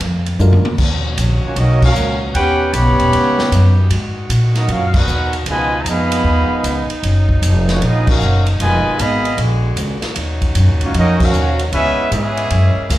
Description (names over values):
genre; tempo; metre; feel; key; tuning
jazz, big band swing; 154 BPM; 4/4; swing 66% on 8ths; Eb minor; A4 = 440 Hz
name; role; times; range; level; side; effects
upright bass; bass; 0.0-13.0 s; Eb1 to Bb2; -15 LUFS; equal; none
swinging big-band drum kit; drums; 0.0-13.0 s; crash cymbal, hi-hat, kick drum, ride cymbal, snare drum, toms; -21 LUFS; equal; none
dark baby grand piano; accompaniment; 0.4-0.6 s; Ab3 to Bb4; -21 LUFS; left 1 dB; slapback echo
bright saxophone section; sustained chords; 0.8-13.0 s; Db3 to G4; -27 LUFS; left 1 dB; plate reverb
warm trumpet section; melody; 1.4-13.0 s; Bb3 to B5; -18 LUFS; equal; plate reverb
bright trombone section; second line; 1.5-13.0 s; Cb3 to G4; -22 LUFS; right 2 dB; plate reverb, slapback echo
room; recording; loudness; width
light reverb; live gig heard through the venue's PA, club reverb; -13 LUFS; side -15 dB against mid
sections
0.8-13.0 A section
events
drum fill 0.4-0.8; band accent 1.8, 4.9, 8.0, 11.1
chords
0.0 Bb7b13; 0.8 Ebm9; 2.3 Eb7alt; 3.9 Abm9; 5.5 Db9; 7.0 Gbmaj7; 8.6 Fm7b5; 9.4 Bb7alt; 10.2 Ebm9; 11.7 Dbm7